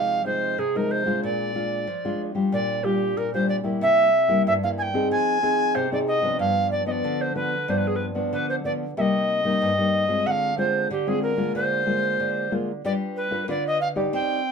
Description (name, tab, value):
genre	samba and choro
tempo	93 BPM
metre	4/4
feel	straight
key	unclear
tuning	A4 = 440 Hz
part	tenor recorder	melody	0.0-14.5 s	G4 to Ab5	-23 LUFS	right 1 dB	none
part	nylon-string guitar	accompaniment	0.0-14.5 s	G2 to D5	-25 LUFS	left 2 dB	none
room	moderate studio ambience, RT60 0.5 s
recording	band playing live in one room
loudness	-21 LUFS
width	side -6 dB against mid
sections	0.0-14.5 A section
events	none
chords	0.0 Fm7/C; 1.2 Bb7; 2.5 Gm7/Bb; 3.8 C7; 5.1 Fm7; 6.4 G7; 9.0 Cm7; 10.3 Dm7b5; 11.6 Bb7/D; 12.8 G7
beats	0.59 | 1.24 1.88 2.53 3.17 | 3.82 4.46 5.11 5.75 | 6.39 7.04 7.68 8.33 | 8.97 9.62 10.26 10.91 | 11.55 12.20 12.84 13.49 | 14.13